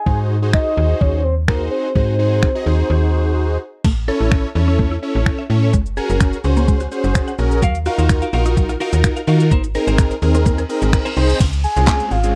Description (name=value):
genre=dance-pop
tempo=127 BPM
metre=4/4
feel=straight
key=unclear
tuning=A4 = 443 Hz
part: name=soft octave-layered synth lead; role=melody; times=0.0-3.3, 11.6-12.4 s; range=Bb4 to Ab5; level=-23 LUFS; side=equal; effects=chorus, tremolo, slapback echo
part: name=big bright polysynth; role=accompaniment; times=0.1-12.4 s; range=Ab3 to Eb5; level=-24 LUFS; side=equal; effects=sidechain pumping
part: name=slap-like FM bass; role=bass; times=0.1-12.4 s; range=Gb1 to Eb3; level=-20 LUFS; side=equal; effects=sidechain pumping
part: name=gated 80s digital drum machine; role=drums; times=0.1-12.3 s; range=crash cymbal, finger snaps, handclaps, hi-hat, kick drum, shaker, snare drum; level=-19 LUFS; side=equal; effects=gated reverb, gated reverb snare
part: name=mallet-like synth pluck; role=arpeggios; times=3.8-11.1 s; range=Gb3 to Ab5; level=-28 LUFS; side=equal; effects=chorus, sidechain pumping, slapback echo
part: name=clean electric guitar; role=riff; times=7.6-11.3 s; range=Eb4 to F5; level=-28 LUFS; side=equal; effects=lush chorus
part: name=reverse cymbal and downlifter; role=sound effects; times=10.7-12.4 s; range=none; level=-33 LUFS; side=equal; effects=none
room=digital ambience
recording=dry, close 1970s-style studio recording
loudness=-17 LUFS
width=mono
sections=0.0-3.8 A section; 3.8-11.4 B section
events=silent gap 2.9-3.8; reverse cymbal 10.7-11.4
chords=0.0 Ab7; 3.8 A; 5.7 Gbadd9; 7.6 Ebmadd9; 9.5 Abadd9; 11.4 Dbmaj7